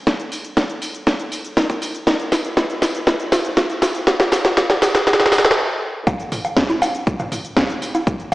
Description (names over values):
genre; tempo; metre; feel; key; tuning
house; 120 BPM; 4/4; straight; none; none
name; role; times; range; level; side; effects
electronic kick drum; drums; 0.1-8.2 s; none; -21 LUFS; equal; high-pass filter on kick, studio ambience, high-pass filter on room
house drum kit; drums; 0.1-8.3 s; hi-hat, shaker, snare drum; -17 LUFS; equal; studio ambience, sidechain pumping on hats, sidechain pumping on perc
electronic bongos, toms and congas; percussion; 6.1-8.3 s; none; -22 LUFS; equal; sidechain pumping on perc, studio ambience, sidechain pumping on toms
room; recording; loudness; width
wet lush hall reverb, RT60 1.8 s, digital ambience; played on a big sound system in a bare room, stone room reverb, high-pass filter, small speaker sound; -16 LUFS; side -18 dB against mid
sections
0.0-6.1 A section; 6.1-8.3 B section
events
build-up 0.0-6.1; drum fill 0.0-5.6; stop 5.6-6.1; drop 6.1-8.3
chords
none